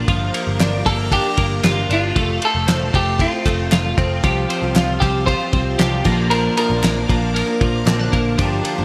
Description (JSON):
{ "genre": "jangly indie pop", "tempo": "116 BPM", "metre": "4/4", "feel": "straight", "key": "unclear", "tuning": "A4 = 440 Hz", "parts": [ { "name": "string machine, full ensemble", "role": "sustained chords", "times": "0.0-8.8 s", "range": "G4 to D6", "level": "-32 LUFS", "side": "equal", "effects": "phaser, ensemble chorus" }, { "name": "twelve-string electric guitar", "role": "arpeggios", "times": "0.0-8.8 s", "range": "F3 to G4", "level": "-25 LUFS", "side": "equal", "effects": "ensemble chorus" }, { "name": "vintage muted picked electric bass", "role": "bass", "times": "0.0-8.8 s", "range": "F1 to C2", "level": "-24 LUFS", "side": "equal", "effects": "none" }, { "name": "cloth-damped thuddy drum kit", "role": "drums", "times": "0.1-8.8 s", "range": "crash cymbal, kick drum, ride cymbal, snare drum", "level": "-23 LUFS", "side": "equal", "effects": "none" }, { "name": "group handclap", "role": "percussion", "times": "0.6-8.0 s", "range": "none", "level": "-33 LUFS", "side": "equal", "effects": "none" }, { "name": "semi-hollow electric guitar", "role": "melody", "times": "0.9-8.1 s", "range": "F4 to C5", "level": "-24 LUFS", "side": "equal", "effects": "none" }, { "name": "picked steel-string acoustic guitar", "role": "accompaniment", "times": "4.2-8.8 s", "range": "Bb2 to Bb4", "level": "-26 LUFS", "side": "equal", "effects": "none" } ], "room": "moderate plate reverb, RT60 1.3 s, small room ambience", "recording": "bright 1980s-style digital production", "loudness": "-18 LUFS", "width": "mono", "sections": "0.0-8.8 A section", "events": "none", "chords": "0.1 Gm7; 2.2 F; 4.2 Csus4; 6.1 Bb", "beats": "| 0.08 0.60 1.12 1.64 | 2.16 2.68 3.20 3.72 | 4.24 4.76 5.28 5.79 | 6.31 6.83 7.35 7.87 | 8.39" }